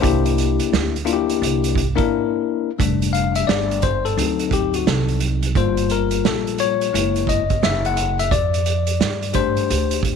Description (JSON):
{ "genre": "hip hop, jazz-hop", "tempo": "87 BPM", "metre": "4/4", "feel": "swing 64% on 16ths", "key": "F major", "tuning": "A4 = 440 Hz", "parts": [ { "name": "bell-like tine electric piano", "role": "accompaniment", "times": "0.0-10.2 s", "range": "F#3 to Gb5", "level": "-20 LUFS", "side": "left 11 dB", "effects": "none" }, { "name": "upright bass", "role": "bass", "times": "0.0-10.2 s", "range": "F1 to G2", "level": "-22 LUFS", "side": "right 2 dB", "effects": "none" }, { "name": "vintage drum kit", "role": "drums", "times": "0.0-10.2 s", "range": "hi-hat, kick drum, snare drum", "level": "-23 LUFS", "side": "right 6 dB", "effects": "none" } ], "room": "light reverb, small room reverb", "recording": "1960s-style stereo with parts hard left and right, lossy compression artefacts", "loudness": "-17 LUFS", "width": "side -6 dB against mid", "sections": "0.0-2.8 A section; 2.8-10.2 B section", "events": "break 2.1-2.8; tine electric piano solo 2.8-10.2", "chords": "0.0 C7; 2.8 F69; 4.2 D7b9; 5.5 Gm7; 6.9 Gb9; 8.3 F69" }